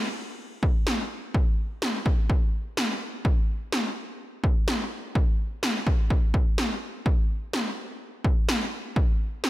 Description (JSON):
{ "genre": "pop", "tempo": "126 BPM", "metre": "4/4", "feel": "straight", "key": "none", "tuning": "none", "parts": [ { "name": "80s electronic pad drums", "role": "drums", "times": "0.6-9.5 s", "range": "kick drum, snare drum", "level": "-24 LUFS", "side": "equal", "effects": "none" } ], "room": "light reverb", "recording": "none", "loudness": "-24 LUFS", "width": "side -16 dB against mid", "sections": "0.0-9.5 A section", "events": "none", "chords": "none", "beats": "0.39 0.87 | 1.34 1.82 2.30 2.77 | 3.25 3.73 4.20 4.68 | 5.15 5.63 6.11 6.58 | 7.06 7.53 8.01 8.49 | 8.96 9.44" }